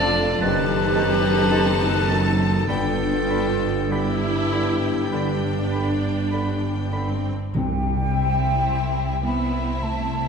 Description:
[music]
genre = classical, slow romantic movement for symphony orchestra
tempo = 48-57 BPM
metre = 4/4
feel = rubato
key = C major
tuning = A4 = 443 Hz
[part]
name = warm studio violin section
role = melody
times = 0.0-10.3 s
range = E5 to A5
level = -32 LUFS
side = left 5 dB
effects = none
[part]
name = mellow hollow small flute group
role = second line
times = 0.0-10.3 s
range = D4 to B5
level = -27 LUFS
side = right 1 dB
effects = none
[part]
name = rich studio violin section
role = second line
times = 0.0-10.3 s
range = D4 to F4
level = -30 LUFS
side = left 4 dB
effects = none
[part]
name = warm clarinet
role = second line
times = 0.0-6.9 s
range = G4 to D5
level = -26 LUFS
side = left 2 dB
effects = none
[part]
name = warm oboe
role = second line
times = 0.0-7.1 s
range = A5 to B5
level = -34 LUFS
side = right 2 dB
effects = none
[part]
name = rich studio viola section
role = accompaniment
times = 0.0-10.3 s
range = B3 to E4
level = -30 LUFS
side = right 2 dB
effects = none
[part]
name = warm bassoon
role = accompaniment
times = 0.0-7.1 s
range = D3 to D#3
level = -35 LUFS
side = right 2 dB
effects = none
[part]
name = warm French horn section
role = sustained chords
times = 0.0-7.2 s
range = D3 to B4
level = -31 LUFS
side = left 1 dB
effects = none
[part]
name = concert harp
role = arpeggios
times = 0.0-10.3 s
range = F2 to D5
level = -30 LUFS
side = left 5 dB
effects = none
[part]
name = rich studio cello section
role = bass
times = 0.0-10.3 s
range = F2 to B3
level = -28 LUFS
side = right 3 dB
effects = none
[part]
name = rich studio double bass section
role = bass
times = 0.0-10.3 s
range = F1 to C2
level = -27 LUFS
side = right 2 dB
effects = none
[part]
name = timpani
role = percussion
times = 7.5-9.2 s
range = C3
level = -28 LUFS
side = equal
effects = none
[sound]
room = wet concert hall reverb, RT60 2.0 s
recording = minimal, uncompressed stereo recording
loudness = -19 LUFS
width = side -6 dB against mid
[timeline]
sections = 0.0-7.5 A section; 7.5-10.3 B section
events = none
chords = 0.4 F#dim7; 2.7 G; 7.5 C

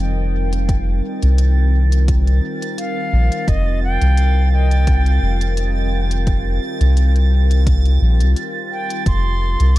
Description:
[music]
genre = ambient dub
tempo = 86 BPM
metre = 4/4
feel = swing 54% on 16ths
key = F mixolydian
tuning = A4 = 440 Hz
[part]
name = warbly tape-like pad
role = sustained chords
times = 0.0-9.8 s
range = Eb3 to Bb4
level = -25 LUFS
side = left 2 dB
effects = chorus, built-in reverb
[part]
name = soft dub sub bass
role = bass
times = 0.0-9.8 s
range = F1 to C2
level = -14 LUFS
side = equal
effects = tube saturation
[part]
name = bubbling stepped-filter texture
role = texture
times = 0.0-9.8 s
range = A6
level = -30 LUFS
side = right 10 dB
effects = chorus, built-in reverb
[part]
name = electronic hi-hat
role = drums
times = 0.5-9.8 s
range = none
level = -35 LUFS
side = left 3 dB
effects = none
[part]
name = electronic kick drum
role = drums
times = 0.7-9.2 s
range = none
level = -19 LUFS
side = equal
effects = overdrive
[part]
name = silver concert flute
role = melody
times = 2.8-9.8 s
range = Eb5 to C6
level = -28 LUFS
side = right 1 dB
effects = dub echo
[sound]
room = little or no reverb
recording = echo-heavy mix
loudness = -14 LUFS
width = side -16 dB against mid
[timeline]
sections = 0.0-9.8 A section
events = none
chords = 0.0 F9sus4

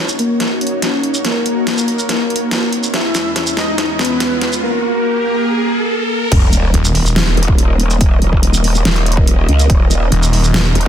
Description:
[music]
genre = heavy wobble dubstep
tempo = 142 BPM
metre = 4/4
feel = half-time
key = Eb phrygian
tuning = A4 = 443 Hz
[part]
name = soft supersaw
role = melody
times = 0.0-6.2 s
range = Bb3 to Fb5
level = -17 LUFS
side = left 1 dB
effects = low-pass filter, tape echo
[part]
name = supersaw pad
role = sustained chords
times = 0.0-10.9 s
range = Fb2 to Eb5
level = -24 LUFS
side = equal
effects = sidechain pumping
[part]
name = riser and sub drop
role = sound effects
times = 2.1-8.0 s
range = none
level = -22 LUFS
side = equal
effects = none
[part]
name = dubstep drum kit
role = drums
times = 0.1-10.9 s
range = crash cymbal, hi-hat, shaker, snare drum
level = -19 LUFS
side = equal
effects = overdrive, high-pass filter on hats, high-pass filter on snare, high-pass filter on perc, high-pass filter on cymbals, high-pass filter on room
[part]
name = growl bass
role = bass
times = 6.3-10.9 s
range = Eb1 to Db2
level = -14 LUFS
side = equal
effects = chorus, overdrive
[part]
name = electronic kick drum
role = drums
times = 6.3-10.9 s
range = none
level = -13 LUFS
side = equal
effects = overdrive
[part]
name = snarling distorted saw bass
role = bass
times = 6.7-7.4, 10.1-10.7 s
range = Eb1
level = -13 LUFS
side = equal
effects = distortion, overdrive
[sound]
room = light reverb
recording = dense, heavily limited modern master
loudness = -12 LUFS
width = side -10 dB against mid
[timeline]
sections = 0.0-6.3 A section; 6.3-10.9 B section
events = build-up 0.0-6.3; drum fill 0.0-4.6; filter sweep on supersaw synth 0.0-6.3; riser 2.1-6.3; drop 6.3-10.9; impact 6.3-8.0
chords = 0.0 Ebm7; 2.9 Dbm/Fb; 6.3 Eb5

